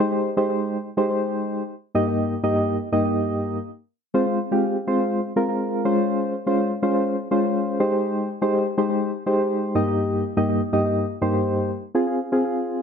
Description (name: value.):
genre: pop.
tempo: 123 BPM.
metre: 4/4.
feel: straight.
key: F minor.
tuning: A4 = 440 Hz.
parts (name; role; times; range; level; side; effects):
soft electric-piano-like synth keys; solo; 0.0-12.8 s; G2 to Eb5; -20 LUFS; equal; chorus, tremolo, slapback echo.
room: light reverb.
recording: dry, close 1970s-style studio recording.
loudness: -20 LUFS.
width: side -7 dB against mid.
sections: 0.0-4.1 A section; 4.1-11.9 B section.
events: none.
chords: 0.0 Abmaj7; 1.9 Eb/G; 4.1 Fm; 5.8 Dbmaj7; 7.8 Abmaj7; 9.8 Eb/G; 11.9 Fm.